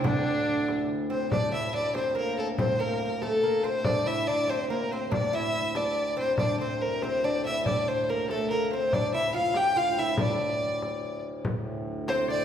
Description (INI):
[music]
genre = medieval dance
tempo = 95 BPM (dotted quarters)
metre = 6/8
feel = straight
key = unclear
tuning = A4 = 440 Hz
[part]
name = dark fiddle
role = melody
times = 0.0-12.4 s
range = D4 to G5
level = -27 LUFS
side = left 1 dB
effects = none
[part]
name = oud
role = second line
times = 0.0-12.4 s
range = D3 to G4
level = -31 LUFS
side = equal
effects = none
[part]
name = pedal harmonium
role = drone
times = 0.0-12.4 s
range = D2 to A2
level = -35 LUFS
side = equal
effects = none
[part]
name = frame drum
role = percussion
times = 0.0-12.4 s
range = none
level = -33 LUFS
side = left 1 dB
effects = none
[part]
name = edgy shawm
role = second line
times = 0.1-0.9, 12.1-12.4 s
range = D4 to D5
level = -36 LUFS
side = left 1 dB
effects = none
[sound]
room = wet recital hall reverb, RT60 1.6 s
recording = heard from further back in the room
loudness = -25 LUFS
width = side -9 dB against mid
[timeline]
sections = 0.0-1.3 A section; 1.3-11.5 B section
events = none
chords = none